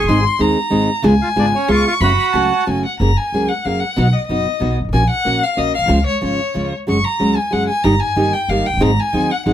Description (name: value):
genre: tango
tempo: 186 BPM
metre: 3/4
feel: rubato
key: F# harmonic minor, F# major from 3.0 s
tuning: A4 = 439 Hz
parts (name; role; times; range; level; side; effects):
- bandoneon; melody; 0.0-2.6 s; C#4 to G#5; -17 LUFS; right 4 dB; none
- rich violin; second line; 0.0-9.5 s; C#5 to C#6; -19 LUFS; left 2 dB; none
- upright bass; bass; 0.0-9.5 s; E#1 to D#2; -19 LUFS; equal; none
- nylon-string guitar; accompaniment; 0.1-9.5 s; B2 to G#4; -18 LUFS; right 1 dB; none
room: light reverb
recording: close, detailed microphones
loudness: -14 LUFS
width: side -11 dB against mid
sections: 0.0-3.0 A section; 3.0-9.5 B section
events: violin solo 3.0-9.5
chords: 0.1 G#; 1.1 C#7; 2.0 F#m; 3.0 F#add9; 4.0 B; 4.9 F#/A#; 5.9 C#; 6.9 F#sus2; 7.9 D#/G; 8.8 G#7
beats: | 0.09 0.41 0.73 | 1.05 1.37 1.70 | 2.02 2.34 2.67 | 3.00 3.33 3.66 | 3.98 4.29 4.61 | 4.93 5.26 5.58 | 5.90 6.22 6.55 | 6.88 7.21 7.53 | 7.85 8.18 8.49 | 8.81 9.13 9.46